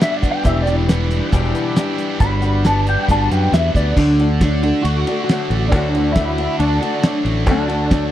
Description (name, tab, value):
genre	folk rock and heartland rock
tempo	137 BPM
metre	4/4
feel	straight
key	unclear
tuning	A4 = 440 Hz
part	clean electric guitar	melody	0.0-8.1 s	D4 to B5	-20 LUFS	equal	ensemble chorus
part	picked old ladder-braced acoustic guitar	accompaniment	0.0-8.1 s	E2 to G4	-23 LUFS	left 4 dB	none
part	bright tonewheel organ	sustained chords	0.0-8.1 s	D4 to D5	-33 LUFS	right 1 dB	none
part	overdriven electric guitar	riff	0.0-8.1 s	E2 to F#4	-24 LUFS	right 1 dB	none
part	cloth-damped thuddy drum kit	drums	0.0-8.0 s	crash cymbal, hi-hat, kick drum, ride cymbal, snare drum	-17 LUFS	equal	none
part	fingered electric bass	bass	0.4-8.1 s	E1 to F#2	-19 LUFS	equal	none
room	small room ambience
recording	dry, close 1970s-style studio recording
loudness	-14 LUFS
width	side -12 dB against mid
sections	0.0-4.0 A section; 4.0-8.1 B section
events	clean electric guitar solo 0.0-4.0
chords	0.5 Em7; 2.2 Gmaj7; 4.0 D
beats	0.02 | 0.46 0.90 1.34 1.78 | 2.22 2.66 3.10 3.53 | 3.97 4.41 4.85 5.29 | 5.73 6.17 6.60 7.04 | 7.48 7.92